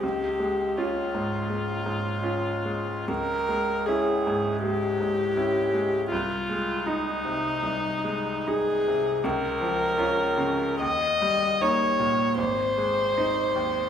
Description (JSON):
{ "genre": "classical, romantic duo for viola and grand piano", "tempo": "78 BPM", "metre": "4/4", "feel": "uneven beats, rubato", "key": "Ab major", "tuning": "A4 = 440 Hz", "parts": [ { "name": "dark viola", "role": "melody", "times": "0.0-13.9 s", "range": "Eb4 to Eb5", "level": "-25 LUFS", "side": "left 1 dB", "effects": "none" }, { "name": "bright grand piano", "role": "accompaniment", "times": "0.0-13.9 s", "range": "Ab1 to F4", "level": "-28 LUFS", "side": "right 1 dB", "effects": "none" } ], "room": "moderate recital hall reverb, RT60 1.3 s", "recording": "minimal, uncompressed stereo recording", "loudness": "-23 LUFS", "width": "side -8 dB against mid", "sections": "0.0-13.9 A section", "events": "none", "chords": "0.0 Db; 3.1 Dbm; 6.1 Ab/C; 9.2 Bbm/Db; 10.8 Eb; 12.4 Ab", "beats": "| 0.03 0.78 1.50 2.23 | 3.08 3.88 4.64 5.37 | 6.11 6.87 7.62 8.47 | 9.24 9.98 10.81 11.61 | 12.38 13.17" }